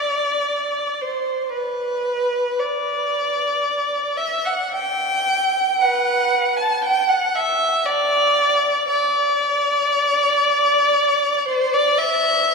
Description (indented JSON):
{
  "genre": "classical, free, expressive piece for unaccompanied violin",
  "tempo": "57 BPM",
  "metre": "3/4",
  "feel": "rubato",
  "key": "unclear",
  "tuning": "A4 = 437 Hz",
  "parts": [
    { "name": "rich violin", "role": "solo", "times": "0.0-12.5 s", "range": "B4 to A5", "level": "-17 LUFS", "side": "equal", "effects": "none" }
  ],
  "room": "wet cathedral reverb, RT60 4.8 s",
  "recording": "studio reverb",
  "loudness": "-17 LUFS",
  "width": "side -4 dB against mid",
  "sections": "0.0-12.5 A section",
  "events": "none",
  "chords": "none"
}